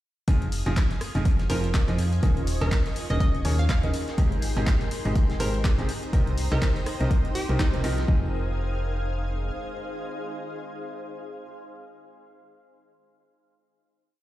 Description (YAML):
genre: piano house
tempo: 123 BPM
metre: 4/4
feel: swing 58% on 16ths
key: F minor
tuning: A4 = 440 Hz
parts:
  - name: analog string pad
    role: sustained chords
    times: 0.3-11.4 s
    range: Ab4 to Ab6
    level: -40 LUFS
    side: equal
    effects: ensemble chorus, sidechain pumping
  - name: clear baby grand piano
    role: riff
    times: 0.3-11.4 s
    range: Ab2 to Eb5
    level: -32 LUFS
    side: right 1 dB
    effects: sidechain pumping, dub echo
  - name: solid FM bass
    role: bass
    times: 0.3-9.5 s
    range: Eb1 to F2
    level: -26 LUFS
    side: equal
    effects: sidechain pumping
  - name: electronic kick drum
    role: drums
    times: 0.3-8.2 s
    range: none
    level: -23 LUFS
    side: equal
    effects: overdrive
  - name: punchy analog drum machine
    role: drums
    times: 0.3-8.1 s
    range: handclaps, hi-hat, rim click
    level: -36 LUFS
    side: left 1 dB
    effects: overdrive
  - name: soft brush drum kit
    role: drums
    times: 0.3-8.1 s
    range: hi-hat, snare drum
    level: -43 LUFS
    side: left 2 dB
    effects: none
  - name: granular cloud pad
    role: texture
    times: 1.1-11.6 s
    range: Eb4 to Ab5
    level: -36 LUFS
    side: left 1 dB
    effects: built-in reverb, sidechain pumping
  - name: hollow square pluck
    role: melody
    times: 1.5-8.0 s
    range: Eb4 to F5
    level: -36 LUFS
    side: right 2 dB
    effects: chorus, dub echo
room: small room ambience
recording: played on a big sound system in a bare room, large studio reverb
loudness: -23 LUFS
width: side -15 dB against mid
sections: 0.3-8.1 drop; 8.1-12.0 final chord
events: drop 0.3-8.1; band accent 7.6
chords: 0.3 Fm7; 2.2 Eb7sus4; 3.9 Abmaj7; 5.9 Cm7; 8.1 Fm7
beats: | 0.28 0.77 1.25 1.74 | 2.23 2.72 3.21 3.69 | 4.18 4.67 5.16 5.64 | 6.13 6.62 7.11 7.59 | 8.08 8.57 9.06 9.55 | 10.03 10.52 11.01 11.50